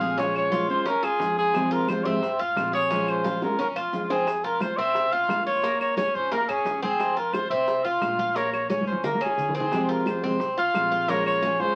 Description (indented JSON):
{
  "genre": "latin, Cuban son and guajira",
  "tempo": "176 BPM",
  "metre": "4/4",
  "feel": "straight",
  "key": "F harmonic minor",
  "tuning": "A4 = 440 Hz",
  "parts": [
    { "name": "warm trumpet", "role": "melody", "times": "0.0-11.8 s", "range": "F4 to F5", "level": "-27 LUFS", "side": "equal", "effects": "none" },
    { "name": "fingerpicked steel-string acoustic guitar", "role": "accompaniment", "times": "0.0-4.3, 9.7-11.8 s", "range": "C3 to G4", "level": "-30 LUFS", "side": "equal", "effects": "none" },
    { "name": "Cuban tres", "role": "arpeggios", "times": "0.0-11.8 s", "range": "Bb3 to Ab4", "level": "-31 LUFS", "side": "equal", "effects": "none" },
    { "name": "upright bass", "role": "bass", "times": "0.0-11.8 s", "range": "Bb1 to Ab2", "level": "-45 LUFS", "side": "equal", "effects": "none" },
    { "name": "bongos", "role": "percussion", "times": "0.0-11.8 s", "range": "none", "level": "-38 LUFS", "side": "equal", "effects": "none" },
    { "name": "congas", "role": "percussion", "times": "0.0-11.8 s", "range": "none", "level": "-37 LUFS", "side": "equal", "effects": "none" },
    { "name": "maracas", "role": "percussion", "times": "0.0-11.8 s", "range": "none", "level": "-58 LUFS", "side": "equal", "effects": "none" },
    { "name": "claves", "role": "percussion", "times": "0.4-11.4 s", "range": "none", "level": "-40 LUFS", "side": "equal", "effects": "none" }
  ],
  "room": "wet studio ambience, RT60 0.5 s",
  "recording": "very old 78 rpm record, vinyl crackle",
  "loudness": "-25 LUFS",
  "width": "mono",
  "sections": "0.0-4.3 A section; 4.3-11.8 A section",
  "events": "drum fill 3.2-4.3, 8.7-9.7",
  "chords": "0.2 Bbm7; 1.5 Fmadd9; 2.9 Bbm7; 4.3 F5; 5.6 Bbm7; 7.0 F5; 8.4 Bbm7; 9.7 Fmadd9; 11.1 Bbm7",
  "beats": "| 0.18 0.52 0.86 1.20 | 1.54 1.89 2.23 2.57 | 2.91 3.25 3.59 3.93 | 4.27 4.61 4.95 5.29 | 5.63 5.97 6.32 6.66 | 7.00 7.34 7.68 8.02 | 8.36 8.70 9.04 9.38 | 9.72 10.06 10.41 10.75 | 11.09 11.43"
}